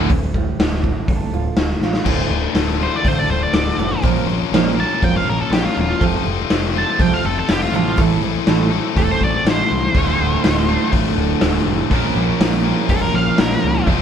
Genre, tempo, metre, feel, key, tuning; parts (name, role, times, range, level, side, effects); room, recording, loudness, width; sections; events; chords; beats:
quiet-loud alternative rock; 122 BPM; 4/4; straight; D minor; A4 = 440 Hz
distorted electric guitar; riff; 0.0-14.0 s; D2 to Bb4; -22 LUFS; left 9 dB; overdrive
overdriven semi-hollow guitar; riff; 0.0-0.1, 9.9-14.0 s; D2 to Bb3; -21 LUFS; right 7 dB; spring reverb
growling picked electric bass; bass; 0.0-14.0 s; D1 to Db2; -23 LUFS; equal; overdrive
fingerpicked steel-string acoustic guitar; arpeggios; 0.1-9.9 s; D2 to F4; -22 LUFS; right 8 dB
raw garage drum kit; drums; 0.1-14.0 s; crash cymbal, hi-hat, kick drum, snare drum; -19 LUFS; equal
octave-fuzz lead guitar; melody; 2.8-13.9 s; F4 to A5; -22 LUFS; right 1 dB; distortion
light reverb; band playing live in one room; -15 LUFS; side -8 dB against mid
0.1-2.1 A section; 2.1-14.0 B section
drum fill 1.8; lead electric guitar solo 2.1-14.0
0.1 Dm; 4.0 Bbm; 6.0 F; 8.0 Am; 10.0 Dm; 11.9 Bbm
| 0.09 0.58 1.08 1.57 | 2.06 2.56 3.05 3.54 | 4.04 4.53 5.03 5.52 | 6.01 6.50 7.00 7.49 | 7.98 8.48 8.97 9.46 | 9.95 10.44 10.94 11.43 | 11.92 12.41 12.90 13.39 | 13.88